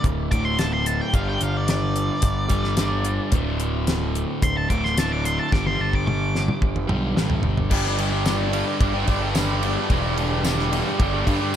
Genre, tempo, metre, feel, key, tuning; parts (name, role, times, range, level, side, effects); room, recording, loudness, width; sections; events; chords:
classic rock; 110 BPM; 4/4; straight; A4 = 440 Hz
octave-fuzz lead guitar; melody; 0.0-7.1 s; D5 to D6; -27 LUFS; equal; distortion, slapback echo
crunchy overdriven guitar; riff; 0.0-11.6 s; D2 to G4; -26 LUFS; equal
fuzz picked electric bass; bass; 0.0-11.6 s; D1 to G2; -26 LUFS; equal; overdrive
damped 70s drum kit; drums; 0.0-11.4 s; crash cymbal, hi-hat, kick drum, ride cymbal, snare drum, toms; -24 LUFS; equal
distorted electric guitar; riff; 7.7-11.6 s; G2 to G3; -27 LUFS; right 1 dB; overdrive
tambourine; percussion; 8.3-11.6 s; -37 LUFS; left 4 dB
light reverb, studio ambience; -20 LUFS; side -10 dB against mid
0.0-7.7 A section; 7.7-11.6 B section
lead electric guitar solo 0.0-7.7; drum fill 5.5-7.7
0.0 D5; 1.1 G5; 3.3 D5; 5.5 G5